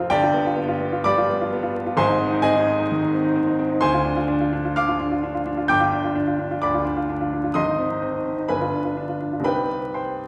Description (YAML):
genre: classical, virtuoso piano study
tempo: 129 BPM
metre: 4/4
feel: rubato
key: unclear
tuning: A4 = 440 Hz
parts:
  - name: clear baby grand piano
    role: solo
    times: 0.0-10.3 s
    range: F1 to G6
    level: -22 LUFS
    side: equal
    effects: none
room: wet recital hall reverb, RT60 1.7 s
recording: heard from further back in the room, vinyl crackle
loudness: -22 LUFS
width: mono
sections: 0.0-10.3 A section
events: none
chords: 0.1 G7; 2.0 Ab; 3.8 Dm7b5; 5.7 G7; 7.6 Ab; 8.5 G7b9; 9.5 Cm